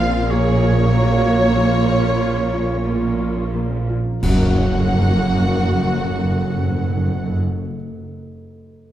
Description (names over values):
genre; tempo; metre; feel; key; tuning
cinematic, emotional film score for orchestra; 43-49 BPM; 4/4; rubato; Gb major; A4 = 440 Hz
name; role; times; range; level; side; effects
warm symphonic violin section; melody; 0.0-7.4 s; Db5 to Gb5; -29 LUFS; left 2 dB; none
clear oboe; second line; 0.0-7.4 s; Db5 to Gb5; -29 LUFS; right 1 dB; none
small flute group; second line; 0.0-7.4 s; Db5 to Gb5; -28 LUFS; right 2 dB; none
warm symphonic violin section; second line; 0.0-7.4 s; Gb4 to F5; -31 LUFS; left 1 dB; none
felt-muted upright piano; accompaniment; 0.0-8.9 s; Gb2 to Db5; -26 LUFS; left 1 dB; none
warm symphonic viola section; accompaniment; 0.0-7.4 s; Gb3 to Ab4; -26 LUFS; right 2 dB; none
dark French horn section; sustained chords; 0.0-7.4 s; Bb3 to Bb4; -27 LUFS; left 4 dB; none
concert harp; arpeggios; 0.0-8.1 s; Gb2 to F5; -32 LUFS; left 5 dB; none
dark symphonic cello section; bass; 0.0-7.4 s; Gb2 to Bb2; -23 LUFS; right 2 dB; none
rich symphonic double bass section; bass; 0.0-7.4 s; Gb1 to Bb1; -22 LUFS; right 2 dB; none
clash cymbals and concert bass drum; percussion; 4.2-6.9 s; none; -25 LUFS; equal; none
timpani; percussion; 4.2-7.4 s; Gb2; -23 LUFS; equal; none
room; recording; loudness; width
wet concert hall reverb, RT60 1.8 s; dark, warm production; -16 LUFS; side -12 dB against mid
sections
0.0-4.2 A section; 4.2-8.9 B section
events
slowing down 0.0-4.2; band accent 4.2-5.6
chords
0.0 Bbm; 4.2 Gb